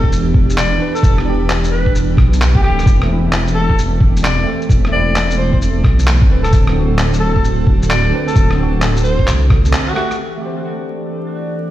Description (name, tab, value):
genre	future garage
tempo	131 BPM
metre	4/4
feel	swing 65% on 16ths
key	unclear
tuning	A4 = 445 Hz
part	breathy alto saxophone	melody	0.0-10.2 s	F#4 to D5	-22 LUFS	left 2 dB	dub echo
part	tine electric piano	accompaniment	0.0-11.7 s	D3 to E5	-23 LUFS	right 3 dB	overdrive, fast stereo tremolo, sidechain pumping, ping-pong delay
part	airy breathy pad	sustained chords	0.0-11.7 s	D3 to B4	-22 LUFS	right 1 dB	chorus, vintage 12-bit sampler grit, sidechain pumping
part	dark detuned saw bass	bass	0.0-9.7 s	D1 to C2	-16 LUFS	equal	tube saturation, sidechain pumping
part	electronic kick drum	drums	0.0-9.6 s	none	-13 LUFS	equal	none
part	electronic shaker, handclaps and rim click	drums	0.1-11.7 s	none	-22 LUFS	equal	low-pass filter on cymbals, low-pass filter on perc, low-pass filter on snare
part	drifting glass-harmonics texture	texture	10.7-11.7 s	D4 to D5	-29 LUFS	left 1 dB	chorus, built-in reverb
room	light reverb, digital ambience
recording	played on a big sound system in a bare room, stone room reverb, vinyl crackle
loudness	-12 LUFS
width	side -14 dB against mid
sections	0.0-10.2 A section; 10.2-11.7 B section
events	break 9.7-10.2; band accent 9.7; filter sweep on analog synth pad 10.2-11.7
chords	0.0 Em7; 6.5 D7; 10.2 Em7